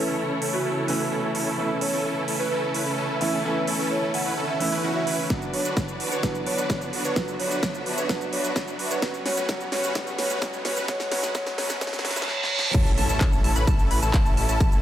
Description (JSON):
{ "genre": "EDM, festival progressive house", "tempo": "129 BPM", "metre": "4/4", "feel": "straight", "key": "A major", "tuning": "A4 = 440 Hz", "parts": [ { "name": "marimba with medium mallets", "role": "melody", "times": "0.0-12.7 s", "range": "F#4 to F#5", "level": "-30 LUFS", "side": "right 1 dB", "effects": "dub echo" }, { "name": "warm baby grand piano", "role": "accompaniment", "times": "0.0-12.8 s", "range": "E3 to F#4", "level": "-32 LUFS", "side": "equal", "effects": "sidechain pumping" }, { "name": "clear symphonic string section", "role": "sustained chords", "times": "0.0-14.8 s", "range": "C#3 to E5", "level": "-33 LUFS", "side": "left 1 dB", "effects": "sidechain pumping" }, { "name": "supersaw chords", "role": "riff", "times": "0.0-14.8 s", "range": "C#4 to C#5", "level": "-29 LUFS", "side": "right 1 dB", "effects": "sidechain pumping, low-pass filter" }, { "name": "riser, reverse cymbal and impact", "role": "sound effects", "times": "1.2-14.6 s", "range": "none", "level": "-34 LUFS", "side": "right 2 dB", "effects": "none" }, { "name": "big-room dance drum kit", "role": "drums", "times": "0.4-14.8 s", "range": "crash cymbal, handclaps, hi-hat, shaker, snare drum", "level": "-31 LUFS", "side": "right 1 dB", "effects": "none" }, { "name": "electronic kick drum", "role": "drums", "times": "5.3-14.7 s", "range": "none", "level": "-23 LUFS", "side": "equal", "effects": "none" }, { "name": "plucky unison lead", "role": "arpeggios", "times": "12.7-14.8 s", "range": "A5 to B5", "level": "-29 LUFS", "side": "left 1 dB", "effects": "sidechain pumping, dub echo" }, { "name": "wide detuned saw bass", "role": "bass", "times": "12.7-14.8 s", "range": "A1", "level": "-26 LUFS", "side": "equal", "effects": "chorus, sidechain pumping" } ], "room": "light reverb, digital ambience", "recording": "high-pass filter", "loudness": "-22 LUFS", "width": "side -11 dB against mid", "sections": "0.0-12.7 A section; 12.7-14.8 B section", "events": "build-up 0.0-12.7; filter sweep on supersaw synth 0.0-12.7; filter sweep 0.0-12.7; drum fill 5.3-12.3, 12.3-12.7; reverse cymbal 11.8-12.7; drop 12.7-14.8; impact 12.7-14.6", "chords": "0.0 A; 5.3 Bm; 9.0 F#m; 12.7 A" }